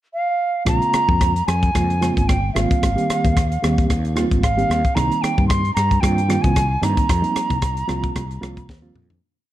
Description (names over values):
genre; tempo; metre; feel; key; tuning
electric jazz fusion; 112 BPM; 4/4; swing 55% on 16ths; unclear; A4 = 442 Hz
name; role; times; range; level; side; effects
silver concert flute; melody; 0.1-8.7 s; F5 to C6; -22 LUFS; right 2 dB; none
reed electric piano; accompaniment; 0.7-9.1 s; Db3 to G4; -24 LUFS; right 2 dB; fast tremolo
mellow fretless electric bass; bass; 0.7-9.2 s; G1 to G2; -22 LUFS; left 1 dB; none
tight funk drum kit; drums; 0.7-9.2 s; hi-hat, kick drum, rim click, snare drum, toms; -21 LUFS; equal; none
room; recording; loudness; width
studio ambience; dark, warm production; -16 LUFS; side -14 dB against mid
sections
0.0-0.7 pickup bar; 0.7-9.2 A section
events
fade-out 7.1-9.2; drum fill 8.7-9.2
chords
0.0 N.C.; 0.7 Bbm9; 2.6 Abmaj13; 5.0 Cm7